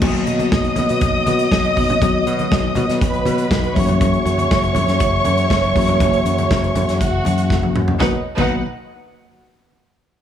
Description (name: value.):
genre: disco.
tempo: 120 BPM.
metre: 4/4.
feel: straight.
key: B major.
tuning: A4 = 440 Hz.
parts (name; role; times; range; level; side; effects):
warm studio string section; second line; 0.0-8.6 s; D#4 to D#6; -21 LUFS; right 2 dB; none.
mellow tine electric piano; accompaniment; 0.0-8.6 s; D#3 to F#4; -22 LUFS; left 4 dB; medium stereo tremolo.
dark French horn section; sustained chords; 0.0-8.2 s; B2 to E5; -25 LUFS; equal; none.
modern bright fingered electric bass; bass; 0.0-8.6 s; F#1 to B2; -21 LUFS; equal; none.
modern studio drum kit; drums; 0.0-8.5 s; crash cymbal, hi-hat, kick drum, snare drum, toms; -21 LUFS; equal; none.
congas; percussion; 0.0-8.6 s; none; -27 LUFS; left 2 dB; none.
room: light reverb, small room ambience.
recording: none.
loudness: -15 LUFS.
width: side -9 dB against mid.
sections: 0.0-8.0 A section; 8.0-10.0 B section.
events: drum fill 7.5-8.0.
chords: 0.0 Bmaj7; 3.8 F#7; 8.0 Bmaj7.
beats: | 0.01 0.51 1.01 1.51 | 2.01 2.51 3.01 3.51 | 4.00 4.50 5.00 5.50 | 6.00 6.50 7.00 7.50 | 8.00 8.50.